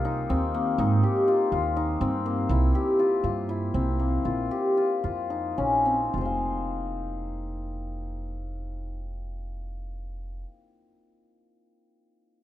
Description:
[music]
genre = contemporary instrumental, chamber music in an uneven meter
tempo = 211-245 BPM (eighths)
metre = 7/8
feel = straight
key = F minor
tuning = A4 = 440 Hz
[part]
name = hammered dulcimer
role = arpeggios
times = 0.0-10.5 s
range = Bb3 to F5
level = -25 LUFS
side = left 2 dB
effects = none
[part]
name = upright bass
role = bass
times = 0.0-10.4 s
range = F1 to Ab2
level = -29 LUFS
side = right 2 dB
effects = none
[sound]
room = light reverb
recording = close, detailed microphones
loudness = -23 LUFS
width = side -13 dB against mid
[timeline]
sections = 0.0-6.1 A section; 6.1-10.1 B section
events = slowing down 2.5-6.1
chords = 0.0 Fsus2; 0.8 Abmaj7; 2.5 C7; 4.2 Bbm; 6.1 Fm

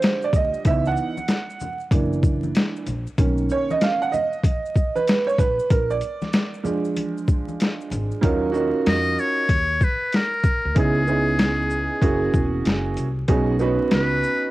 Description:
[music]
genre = hip hop, jazz-hop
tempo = 95 BPM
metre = 4/4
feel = swing 64% on 16ths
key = Eb minor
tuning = A4 = 440 Hz
[part]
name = clear upright piano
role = accompaniment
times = 0.0-14.5 s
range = D3 to Gb5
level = -23 LUFS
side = right 3 dB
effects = none
[part]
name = boom bap sampler-style drum kit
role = drums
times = 0.0-14.4 s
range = hi-hat, kick drum, shaker, snare drum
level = -21 LUFS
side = left 1 dB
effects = overdrive, cassette tape
[part]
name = maracas and congas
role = percussion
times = 0.0-8.2 s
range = none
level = -36 LUFS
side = left 4 dB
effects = none
[part]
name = upright bass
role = bass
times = 0.3-14.2 s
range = Fb1 to F2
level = -26 LUFS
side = equal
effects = transformer saturation
[part]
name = trumpet with metal mute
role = melody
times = 8.9-14.5 s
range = Ab4 to Eb5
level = -23 LUFS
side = left 2 dB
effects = cassette tape
[sound]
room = light reverb, studio reverb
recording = home recording on cassette, vinyl crackle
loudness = -19 LUFS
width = side -17 dB against mid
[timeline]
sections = 0.0-8.2 A section; 8.2-14.5 B section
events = upright piano solo 0.0-8.2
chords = 0.0 Ebmaj9; 0.7 Dbm9; 1.9 Gbaug7; 3.2 Bmaj7; 5.7 Bb7; 8.2 Ebm7; 10.8 Dbm9; 12.0 Gb7; 13.3 B69

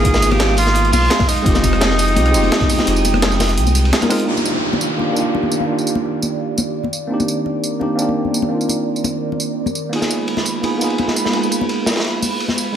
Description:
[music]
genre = liquid drum and bass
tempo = 170 BPM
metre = 4/4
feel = straight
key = unclear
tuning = A4 = 439 Hz
[part]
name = breathy alto saxophone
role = melody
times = 0.0-3.9 s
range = Eb4 to Ab4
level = -19 LUFS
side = equal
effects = digital delay
[part]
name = tine electric piano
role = accompaniment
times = 0.0-12.8 s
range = Ab3 to Bb4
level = -20 LUFS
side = right 1 dB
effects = low-pass filter, ping-pong delay
[part]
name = airy breathy pad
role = sustained chords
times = 0.0-12.8 s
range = Eb3 to Eb6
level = -24 LUFS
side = right 3 dB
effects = chorus, phaser
[part]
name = saturated sub bass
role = bass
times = 0.0-3.9 s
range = F1 to C2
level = -17 LUFS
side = equal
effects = none
[part]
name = breakbeat sampler-style drum kit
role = drums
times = 0.0-12.7 s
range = hi-hat, ride cymbal, rim click, snare drum, tambourine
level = -22 LUFS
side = right 1 dB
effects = small room ambience
[part]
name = crunchy breakbeat drum kit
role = drums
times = 0.0-4.2, 9.9-12.7 s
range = hi-hat, ride cymbal, snare drum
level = -23 LUFS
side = equal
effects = high-pass filter on cymbals, small room ambience, high-pass filter on hats, high-pass filter on snare, high-pass filter on room
[part]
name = electronic kick drum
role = drums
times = 0.0-2.7 s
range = none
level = -18 LUFS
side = equal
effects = small room ambience
[part]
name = congas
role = percussion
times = 0.3-12.6 s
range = none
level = -24 LUFS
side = left 4 dB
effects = none
[part]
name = downlifter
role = sound effects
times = 4.3-7.1 s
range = none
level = -25 LUFS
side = equal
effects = none
[sound]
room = light reverb, small room ambience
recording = none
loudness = -15 LUFS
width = side -9 dB against mid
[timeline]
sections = 0.0-4.3 A section; 4.3-12.8 B section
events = drop 0.0-4.3; kick drops out 2.9-4.3; filter sweep on tine electric piano 4.3-12.8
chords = 0.0 Abm6; 1.5 Fm9; 4.3 Ebmaj9; 6.9 Cm9; 9.9 Abm6

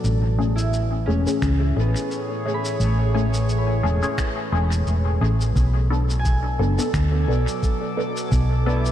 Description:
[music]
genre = ambient dub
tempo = 87 BPM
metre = 4/4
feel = swing 56% on 16ths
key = B dorian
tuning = A4 = 441 Hz
[part]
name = warbly tape-like pad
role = sustained chords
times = 0.0-8.9 s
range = A2 to D6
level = -28 LUFS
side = right 1 dB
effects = chorus, built-in reverb
[part]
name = hollow-body short-scale fingered electric bass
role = bass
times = 0.0-8.9 s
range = E1 to D2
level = -20 LUFS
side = equal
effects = none
[part]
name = electronic shaker and finger snaps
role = drums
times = 0.0-8.9 s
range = none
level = -35 LUFS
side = left 1 dB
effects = dub echo
[part]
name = filtered dub chord stab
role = stabs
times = 0.4-8.9 s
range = A3 to A4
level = -27 LUFS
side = left 3 dB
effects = phaser, lush chorus, cassette tape, dub echo
[part]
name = concert harp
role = arpeggios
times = 0.6-8.9 s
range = A3 to B5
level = -32 LUFS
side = equal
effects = vintage 12-bit sampler grit, ping-pong delay
[part]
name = electronic kick drum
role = drums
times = 1.4-8.5 s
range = none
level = -23 LUFS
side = equal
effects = none
[sound]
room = light reverb, digital ambience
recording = none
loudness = -19 LUFS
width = side -11 dB against mid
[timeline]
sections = 0.0-5.6 A section; 5.6-8.9 B section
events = none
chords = 0.0 Amaj7; 5.6 Bm7

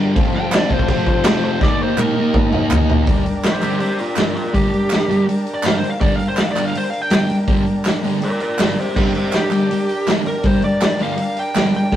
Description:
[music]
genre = garage rock duo or trio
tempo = 163 BPM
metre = 4/4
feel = straight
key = G minor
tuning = A4 = 440 Hz
[part]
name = overdriven combo organ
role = sustained chords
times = 0.0-12.0 s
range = C4 to Bb4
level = -27 LUFS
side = equal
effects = none
[part]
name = fuzz guitar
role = riff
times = 0.0-12.0 s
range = F2 to Eb4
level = -20 LUFS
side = equal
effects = distortion
[part]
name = raw garage drum kit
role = drums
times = 0.2-12.0 s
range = crash cymbal, hi-hat, kick drum, snare drum, toms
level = -19 LUFS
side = equal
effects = none
[part]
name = fuzz lead guitar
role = melody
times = 0.4-11.9 s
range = F4 to G5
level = -22 LUFS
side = left 1 dB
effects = distortion
[part]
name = group handclap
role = percussion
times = 0.5-11.6 s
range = none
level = -29 LUFS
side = right 3 dB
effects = none
[sound]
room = moderate stone room reverb, RT60 1.3 s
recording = rough rehearsal-room recording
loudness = -15 LUFS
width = side -11 dB against mid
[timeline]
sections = 0.0-3.1 A section; 3.1-12.0 B section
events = drum fill 1.6-3.1; lead electric guitar solo 3.1-12.0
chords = 0.2 F; 1.6 Eb; 3.1 Gm

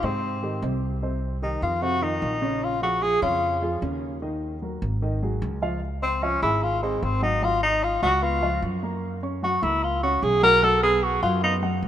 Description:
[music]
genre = jazz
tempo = 150 BPM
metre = 4/4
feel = straight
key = unclear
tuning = A4 = 439 Hz
[part]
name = warm tenor saxophone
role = melody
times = 0.0-11.6 s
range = Ab3 to Bb4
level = -22 LUFS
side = left 1 dB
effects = none
[part]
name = dark baby grand piano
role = accompaniment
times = 0.0-11.9 s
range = C3 to F#6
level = -30 LUFS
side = right 1 dB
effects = none
[part]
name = upright bass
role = bass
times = 0.0-11.9 s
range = Ab1 to Ab2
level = -28 LUFS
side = right 1 dB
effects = none
[sound]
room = moderate lush hall reverb, RT60 2.8 s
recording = rough home demo mix, nothing above 10.9 kHz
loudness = -21 LUFS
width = side -10 dB against mid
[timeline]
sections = 0.0-5.8 A section; 5.8-11.9 A section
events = tenor saxophone solo 0.0-11.9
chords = 0.0 Abmaj7; 1.0 Cm; 1.8 F5; 2.6 Bbm7; 4.2 Ebm; 5.0 Ab5; 5.8 Dbmaj7; 7.4 Ab5; 8.2 Db7; 9.0 Gb; 10.6 B5

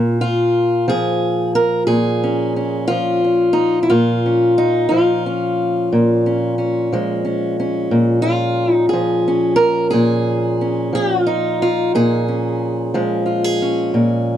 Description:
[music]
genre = acoustic country blues, solo or duo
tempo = 60 BPM (dotted quarters)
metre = 12/8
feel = straight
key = Bb minor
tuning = A4 = 440 Hz
[part]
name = fingerpicked steel-string acoustic guitar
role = solo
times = 0.0-14.4 s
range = Bb2 to Bb4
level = -15 LUFS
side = equal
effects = none
[sound]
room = light reverb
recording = dry, close 1970s-style studio recording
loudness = -15 LUFS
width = side -10 dB against mid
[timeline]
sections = 0.0-14.4 A section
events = none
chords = 0.0 Bbm7

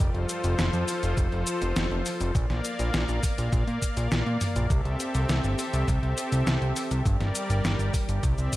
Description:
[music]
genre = synthwave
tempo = 102 BPM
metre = 4/4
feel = straight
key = F major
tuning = A4 = 441 Hz
[part]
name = warm analog pad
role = sustained chords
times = 0.0-8.6 s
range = F3 to F5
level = -30 LUFS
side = left 1 dB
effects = chorus, sidechain pumping
[part]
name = fat analog bass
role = bass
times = 0.0-8.5 s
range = F1 to Bb2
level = -26 LUFS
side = equal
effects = none
[part]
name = detuned 8-bit digital drum machine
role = drums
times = 0.0-8.6 s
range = cabasa, hi-hat, snare drum, toms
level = -32 LUFS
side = equal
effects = studio reverb
[part]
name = electronic kick drum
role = drums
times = 0.0-8.6 s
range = none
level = -26 LUFS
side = equal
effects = studio reverb
[sound]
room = light reverb, digital ambience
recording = none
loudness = -24 LUFS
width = side -16 dB against mid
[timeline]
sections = 0.0-8.6 A section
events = none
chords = 0.0 F; 2.4 Bb; 4.7 C6; 7.1 Gm

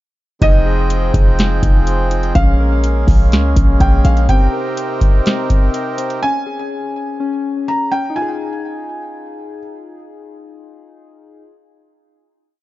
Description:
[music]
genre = hip hop, atmospheric cloud-rap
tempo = 124 BPM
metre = 4/4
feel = half-time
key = F minor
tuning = A4 = 440 Hz
[part]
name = felt-muted upright piano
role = melody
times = 0.4-9.6 s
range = Eb5 to Bb5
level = -23 LUFS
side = right 1 dB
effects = ping-pong delay
[part]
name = hand-pumped harmonium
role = sustained chords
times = 0.4-6.2 s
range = C3 to G5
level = -22 LUFS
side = right 2 dB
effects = sidechain pumping
[part]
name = soft electric-piano-like synth keys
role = arpeggios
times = 0.4-11.6 s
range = C4 to Bb4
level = -24 LUFS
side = left 5 dB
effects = chorus, ping-pong delay
[part]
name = warm 808-style bass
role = bass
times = 0.4-4.3 s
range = F1 to Db2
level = -14 LUFS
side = equal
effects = none
[part]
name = booming analog drum machine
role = drums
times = 0.4-6.2 s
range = hi-hat, kick drum, snare drum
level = -13 LUFS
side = equal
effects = none
[sound]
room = little or no reverb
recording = dark, warm production, nothing above 7.5 kHz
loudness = -13 LUFS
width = side -16 dB against mid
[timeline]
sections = 0.4-8.2 verse; 8.2-12.0 final chord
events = none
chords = 0.4 Fm7; 2.4 Bbm7; 4.3 Cm7; 6.2 Db5; 8.2 Fm7

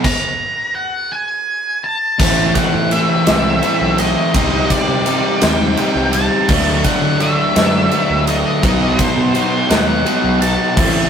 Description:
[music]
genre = quiet-loud alternative rock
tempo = 56 BPM (dotted quarters)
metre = 6/8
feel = straight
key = A dorian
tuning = A4 = 444 Hz
[part]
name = octave-fuzz lead guitar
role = melody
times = 0.0-11.1 s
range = C5 to Bb5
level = -19 LUFS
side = equal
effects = distortion, slapback echo
[part]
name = crunchy overdriven guitar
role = riff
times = 0.0-11.1 s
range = A2 to E4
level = -19 LUFS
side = right 6 dB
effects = none
[part]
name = overdriven semi-hollow guitar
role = riff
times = 0.0-11.1 s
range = A2 to E4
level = -19 LUFS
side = left 6 dB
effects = none
[part]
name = big rock drum kit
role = drums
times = 0.0-10.9 s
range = crash cymbal, kick drum, ride cymbal, snare drum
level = -18 LUFS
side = equal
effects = none
[part]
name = fuzz fingered electric bass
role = bass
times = 2.2-11.1 s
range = A1 to D3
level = -22 LUFS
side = equal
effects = overdrive
[sound]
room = moderate studio reverb, RT60 0.6 s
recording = rough rehearsal-room recording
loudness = -13 LUFS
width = side -7 dB against mid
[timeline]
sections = 0.0-2.2 A section; 2.2-11.1 B section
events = stop 0.0-2.2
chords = 0.0 N.C.; 2.2 Am; 4.3 Cm; 6.5 D; 8.6 B

